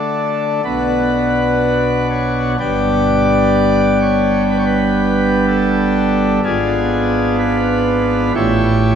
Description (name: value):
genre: classical, chorale-style piece for pipe organ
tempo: 62 BPM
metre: 4/4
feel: rubato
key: unclear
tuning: A4 = 441 Hz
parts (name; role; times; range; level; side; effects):
- pipe organ, principal chorus; solo; 0.0-9.0 s; G1 to D5; -13 LUFS; equal; none
room: wet church reverb, RT60 3.6 s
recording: none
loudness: -13 LUFS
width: side -8 dB against mid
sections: 0.0-9.0 A section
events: none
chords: 0.0 D5; 0.6 Bm; 2.6 G; 6.4 G#dim7; 8.4 A7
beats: 0.64 1.61 | 2.60 3.55 4.51 5.47 | 6.43 7.39 8.35